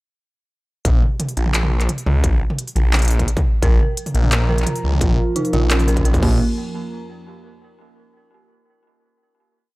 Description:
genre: half-time drum and bass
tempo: 173 BPM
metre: 4/4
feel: half-time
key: Bb minor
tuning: A4 = 440 Hz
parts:
  - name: phased detuned saw bass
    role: bass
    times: 0.8-6.4 s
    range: Bb1 to Db2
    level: -17 LUFS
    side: equal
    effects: phaser
  - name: electronic kick drum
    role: drums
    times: 0.8-6.3 s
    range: none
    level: -18 LUFS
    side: equal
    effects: distortion
  - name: industrial drum kit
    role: drums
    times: 0.9-6.3 s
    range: crash cymbal, handclaps, hi-hat, toms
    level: -24 LUFS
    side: equal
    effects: none
  - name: dark analog pad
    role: sustained chords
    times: 3.6-7.7 s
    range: F3 to Bb5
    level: -27 LUFS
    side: right 2 dB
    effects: chorus, phaser, vintage 12-bit sampler grit, sidechain pumping
  - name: dark detuned synth bell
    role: arpeggios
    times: 3.6-6.4 s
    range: Bb3 to Bb4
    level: -25 LUFS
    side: right 2 dB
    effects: chorus, analog delay
room: little or no reverb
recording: dry, gritty hardware recording, transformer saturation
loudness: -16 LUFS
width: side -21 dB against mid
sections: 0.8-6.4 drop; 6.4-7.8 final note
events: drop 0.8-6.4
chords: 0.8 Bb5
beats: | 0.85 1.20 1.54 1.89 | 2.24 2.58 2.93 3.28 | 3.62 3.97 4.32 4.67 | 5.01 5.36 5.71 6.05 | 6.40 6.75 7.09 7.44

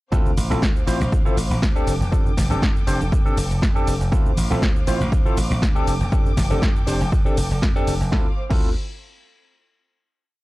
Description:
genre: filtered disco house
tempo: 120 BPM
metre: 4/4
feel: swing 53% on 16ths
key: D minor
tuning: A4 = 445 Hz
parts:
  - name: barky tine electric piano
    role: accompaniment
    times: 0.1-8.7 s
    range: C4 to C5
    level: -26 LUFS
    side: equal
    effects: phaser, sidechain pumping
  - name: warm symphonic violin section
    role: sustained chords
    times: 0.1-8.4 s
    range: A4 to D6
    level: -33 LUFS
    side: equal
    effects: vintage 12-bit sampler grit, sidechain pumping
  - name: dry thumbed slap bass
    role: bass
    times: 0.1-8.7 s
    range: F1 to F2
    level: -23 LUFS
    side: equal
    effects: sidechain pumping
  - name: electronic kick drum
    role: drums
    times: 0.1-8.6 s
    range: none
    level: -20 LUFS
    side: equal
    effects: none
  - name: house drum kit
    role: drums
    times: 0.1-8.6 s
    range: cabasa, crash cymbal, hi-hat, snare drum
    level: -29 LUFS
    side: equal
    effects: none
  - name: tambourine and congas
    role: percussion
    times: 0.1-8.1 s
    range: none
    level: -32 LUFS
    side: right 1 dB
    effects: none
room: digital ambience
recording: dry, gritty hardware recording, transformer saturation, cassette tape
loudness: -18 LUFS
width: side -19 dB against mid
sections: 0.1-8.1 drop; 8.1-10.1 final chord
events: drop 0.1-8.1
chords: 0.1 Dm7; 1.9 F69; 4.1 Dm7; 5.9 F69; 8.1 Dm7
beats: | 0.12 0.62 1.12 1.62 | 2.12 2.62 3.12 3.62 | 4.12 4.62 5.12 5.62 | 6.12 6.62 7.12 7.62 | 8.12 8.62

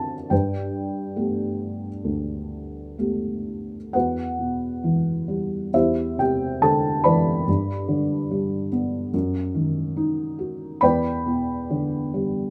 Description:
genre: classical, lyrical solo piano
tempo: 61-73 BPM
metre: 4/4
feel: rubato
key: G major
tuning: A4 = 441 Hz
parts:
  - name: felt-muted upright piano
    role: solo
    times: 0.0-12.5 s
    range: D2 to B5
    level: -24 LUFS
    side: equal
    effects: none
room: moderate studio reverb, RT60 0.6 s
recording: none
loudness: -24 LUFS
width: mono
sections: 0.0-3.9 A section; 3.9-12.5 B section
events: none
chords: 0.3 Gadd9; 3.9 Emadd9; 5.7 Cadd9/E; 7.5 G; 9.1 Ebm/Gb; 10.8 Em7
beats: | 0.31 1.17 2.05 3.00 | 3.94 4.84 5.73 6.62 | 7.48 8.31 9.14 9.97 | 10.83 11.71

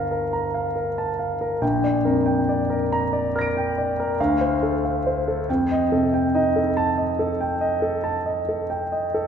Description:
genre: classical, impressionist solo piano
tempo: 47 BPM (dotted quarters)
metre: 9/8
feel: rubato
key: Bb major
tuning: A4 = 442 Hz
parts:
  - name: warm concert grand piano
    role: solo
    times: 0.0-9.3 s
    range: G1 to D7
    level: -20 LUFS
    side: equal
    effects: none
room: wet scoring stage reverb, RT60 1.6 s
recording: heard from further back in the room, lossy compression artefacts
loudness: -20 LUFS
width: side -7 dB against mid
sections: 0.0-9.3 A section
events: none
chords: 0.0 Gm9; 1.6 Bb6; 4.2 Dm7; 5.5 F9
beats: 0.32 | 1.62 2.90 4.19 | 5.48 6.76 8.04

